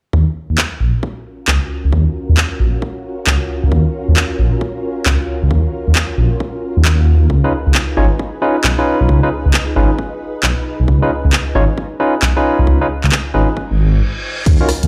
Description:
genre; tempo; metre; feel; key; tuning
UK garage, two-step garage; 134 BPM; 4/4; swing 64% on 16ths; Eb minor; A4 = 439 Hz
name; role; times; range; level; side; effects
soft string machine; sustained chords; 0.1-14.9 s; Gb3 to F5; -28 LUFS; equal; ensemble chorus, sidechain pumping
dark detuned saw bass; bass; 0.1-14.9 s; Ab1 to Eb2; -16 LUFS; equal; none
electronic kick drum; drums; 0.1-14.6 s; none; -23 LUFS; equal; high-pass filter on kick
house drum kit; drums; 0.6-14.9 s; crash cymbal, handclaps, hi-hat, rim click; -20 LUFS; equal; none
barky tine electric piano; stabs; 7.4-14.7 s; Db4 to Db5; -19 LUFS; equal; overdrive, low-pass filter, delay
reverse cymbal; sound effects; 13.7-14.5 s; none; -28 LUFS; equal; none
room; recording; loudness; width
little or no reverb; played on a big sound system in a bare room, large studio reverb; -15 LUFS; mono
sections
0.1-14.5 A section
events
filter sweep on string machine 0.1-14.5; reverse cymbal 13.7-14.5; stop 14.0-14.5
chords
0.1 Ebm9; 7.3 Db9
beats
| 0.14 0.58 1.03 1.48 | 1.93 2.37 2.82 3.27 | 3.72 4.17 4.61 5.06 | 5.51 5.96 6.40 6.85 | 7.30 7.75 8.20 8.64 | 9.09 9.54 9.99 10.43 | 10.88 11.33 11.78 12.22 | 12.67 13.12 13.57 14.02 | 14.46

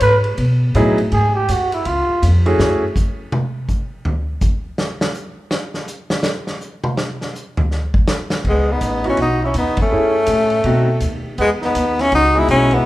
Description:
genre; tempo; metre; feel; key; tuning
jazz, small-group swing and bop; 164 BPM; 4/4; swing 63% on 8ths; unclear; A4 = 440 Hz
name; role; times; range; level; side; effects
growling trumpet; second line; 0.0-2.2, 8.5-12.9 s; B3 to B4; -20 LUFS; right 1 dB; none
upright bass; bass; 0.0-2.8, 8.4-12.8 s; A1 to B2; -18 LUFS; equal; none
vintage drum kit; drums; 0.0-12.8 s; crash cymbal, hi-hat, kick drum, ride cymbal, snare drum, toms; -22 LUFS; equal; none
clear grand piano; accompaniment; 0.8-2.8, 9.0-12.8 s; F#3 to G#4; -20 LUFS; equal; none
breathy tenor saxophone; melody; 8.5-12.9 s; G#3 to E4; -16 LUFS; left 1 dB; none
room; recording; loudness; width
moderate recital hall reverb, RT60 1.4 s; recorded in a church or concert hall; -15 LUFS; side -16 dB against mid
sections
0.0-8.5 A section; 8.5-12.9 B section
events
trumpet solo 0.0-8.5; drum solo 2.6-8.5; band accent 9.7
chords
0.0 Emaj9; 1.1 Eadd9 (rootless); 1.9 C#; 2.6 F#m9; 4.1 N.C.; 8.5 C#m9; 9.9 F#m7; 10.7 B7b9; 11.4 Emaj9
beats
0.02 0.39 0.75 | 1.12 1.49 1.85 2.22 | 2.59 2.95 3.32 3.69 | 4.05 4.42 4.79 5.15 | 5.52 5.89 6.25 6.62 | 6.99 7.35 7.72 8.08 | 8.45 8.82 9.18 9.55 | 9.92 10.29 10.65 11.02 | 11.39 11.75 12.12 12.49 | 12.85

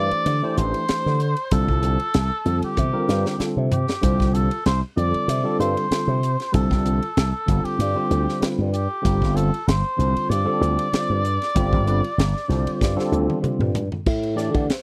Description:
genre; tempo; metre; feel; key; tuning
electric jazz fusion; 96 BPM; 4/4; swing 54% on 16ths; unclear; A4 = 439 Hz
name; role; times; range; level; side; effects
trumpet with cup mute; melody; 0.0-13.4 s; G4 to D5; -28 LUFS; equal; slapback echo
bright tine electric piano; accompaniment; 0.0-14.8 s; D3 to D5; -28 LUFS; equal; ensemble chorus
slap bass with an envelope filter; bass; 0.0-14.7 s; G1 to D3; -24 LUFS; equal; none
crisp fusion drum kit; drums; 0.1-14.8 s; crash cymbal, hi-hat, kick drum, ride cymbal, snare drum, toms; -27 LUFS; equal; none
room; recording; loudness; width
little or no reverb; dry, close 1970s-style studio recording; -22 LUFS; mono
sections
0.0-14.1 A section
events
drum fill 2.8-4.0, 12.8-14.1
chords
0.0 D9sus4; 1.5 Csus4; 7.5 G9sus4; 14.1 A9sus4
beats
0.26 0.89 | 1.52 2.15 2.77 3.40 | 4.03 4.66 5.29 5.91 | 6.54 7.17 7.79 8.42 | 9.05 9.67 10.30 10.93 | 11.55 12.18 12.81 13.43 | 14.06 14.69

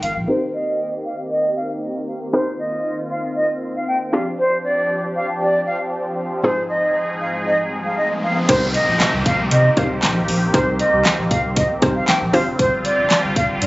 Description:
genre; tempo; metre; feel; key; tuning
dance-pop; 117 BPM; 4/4; straight; C minor; A4 = 436 Hz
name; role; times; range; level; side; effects
concert flute; melody; 0.0-13.7 s; C5 to G5; -20 LUFS; equal; low-pass filter, digital delay
filtered supersaw swell; sustained chords; 0.0-13.7 s; Ab2 to Ab4; -25 LUFS; equal; phaser, sidechain pumping, low-pass filter
warm sub bass; bass; 0.0-0.2, 8.5-13.7 s; F1 to C3; -22 LUFS; equal; sidechain pumping
pop drum kit; drums; 0.0-0.2, 8.5-13.7 s; crash cymbal, handclaps, hi-hat, kick drum, snare drum; -20 LUFS; equal; none
hollow square pluck; accompaniment; 0.3-13.2 s; Ab2 to C5; -21 LUFS; equal; chorus, sidechain pumping, low-pass filter
riser and downlifter; sound effects; 7.1-12.6 s; none; -28 LUFS; equal; none
room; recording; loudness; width
light reverb, digital ambience; recorded on a phone in the room, club reverb, nothing above 7.8 kHz; -17 LUFS; side -20 dB against mid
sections
0.3-8.5 A section; 8.5-13.7 B section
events
filter sweep 0.3-8.5; riser 7.1-8.5; drop 8.5-13.7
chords
0.3 Cm7; 4.1 G7sus4; 6.4 Fm7/Ab; 8.5 Cm7; 12.3 G7sus4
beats
| 0.28 0.80 1.31 1.82 | 2.34 2.85 3.36 3.87 | 4.39 4.90 5.41 5.93 | 6.44 6.95 7.46 7.98 | 8.49 9.00 9.52 10.03 | 10.54 11.05 11.57 12.08 | 12.59 13.11 13.62

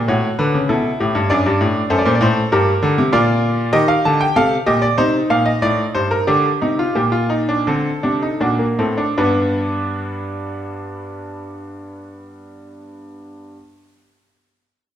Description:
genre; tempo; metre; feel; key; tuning
classical, baroque-style 3-part fugue for grand piano; 76-100 BPM; 4/4; straight; unclear; A4 = 440 Hz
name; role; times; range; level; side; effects
bright concert grand piano; solo; 0.0-13.6 s; F#2 to A5; -16 LUFS; equal; none
room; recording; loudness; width
wet recital hall reverb, RT60 1.5 s; minimal, uncompressed stereo recording; -15 LUFS; side -10 dB against mid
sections
0.0-9.2 A section; 9.2-12.3 B section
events
slowing down 2.5-9.2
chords
0.1 A7; 1.3 D7/F#; 2.5 Gm; 3.7 Eb; 5.0 Cm; 6.3 Gm; 7.7 D7; 9.2 G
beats
0.09 0.70 | 1.31 1.91 2.52 3.13 | 3.74 4.36 4.98 5.62 | 6.28 6.96 7.67 8.40 | 9.18 9.96 10.75 11.53

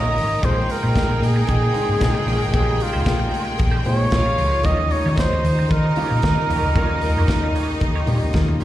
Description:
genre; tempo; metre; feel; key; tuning
disco; 114 BPM; 4/4; swing 56% on 16ths; Bb dorian; A4 = 439 Hz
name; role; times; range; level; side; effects
warm flugelhorn; melody; 0.0-8.3 s; F4 to Eb5; -23 LUFS; right 2 dB; slapback echo
bright studio string section; second line; 0.0-8.6 s; Eb4 to Bb5; -28 LUFS; left 1 dB; slapback echo
clean electric guitar; accompaniment; 0.0-8.6 s; Ab3 to Db5; -36 LUFS; right 7 dB; wah, slapback echo
clear studio string section; sustained chords; 0.0-8.6 s; Bb2 to Eb4; -30 LUFS; right 2 dB; none
hollow-body short-scale fingered electric bass; bass; 0.0-8.6 s; Ab1 to Eb3; -20 LUFS; equal; none
congas; percussion; 0.1-8.6 s; none; -35 LUFS; left 4 dB; none
modern studio drum kit; drums; 0.2-8.6 s; hi-hat, kick drum, snare drum; -24 LUFS; equal; none
warm grand piano; accompaniment; 0.4-8.6 s; C3 to G4; -29 LUFS; left 3 dB; slapback echo
cowbell; percussion; 0.4-8.5 s; none; -39 LUFS; left 3 dB; none
room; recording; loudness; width
light reverb; live gig heard through the venue's PA, recital hall reverb; -17 LUFS; side -13 dB against mid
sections
0.0-8.6 A section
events
none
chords
0.4 Bbm9; 4.6 Eb9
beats
| 0.43 0.95 1.48 2.01 | 2.54 3.06 3.59 4.12 | 4.65 5.17 5.70 6.23 | 6.75 7.28 7.80 8.33

